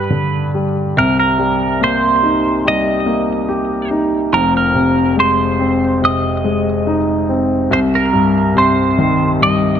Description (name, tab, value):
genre	pop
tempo	71 BPM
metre	4/4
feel	straight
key	C minor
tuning	A4 = 440 Hz
part	twelve-string electric guitar	melody	0.0-9.8 s	Bb4 to Eb5	-16 LUFS	right 3 dB	phaser
part	warm baby grand piano	accompaniment	0.0-9.8 s	F1 to G4	-14 LUFS	left 1 dB	none
room	moderate lush hall reverb, RT60 1.8 s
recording	none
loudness	-12 LUFS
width	side -8 dB against mid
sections	1.0-9.8 A section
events	none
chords	0.0 G; 1.0 Cm7; 4.3 Fm7; 7.7 Cm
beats	0.11 | 0.95 1.80 2.64 3.49 | 4.33 5.18 6.02 6.87 | 7.71 8.56 9.40